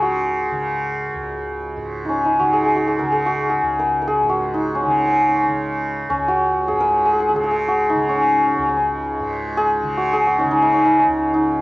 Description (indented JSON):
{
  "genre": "indian classical, Hindustani",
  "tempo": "free time",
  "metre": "none",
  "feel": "none",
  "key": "Db raga durga",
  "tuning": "A4 = 444 Hz",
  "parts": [
    { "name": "santur", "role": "melody", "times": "0.0-11.6 s", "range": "Db4 to Bb4", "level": "-17 LUFS", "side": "equal", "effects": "cassette tape" },
    { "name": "tanpura", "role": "drone", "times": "0.0-11.6 s", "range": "Db2 to Db3", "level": "-26 LUFS", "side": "right 2 dB", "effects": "cassette tape" }
  ],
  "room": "light reverb, studio ambience",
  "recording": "home recording on cassette",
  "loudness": "-16 LUFS",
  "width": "side -18 dB against mid",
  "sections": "0.0-11.6 A section",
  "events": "none",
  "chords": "none"
}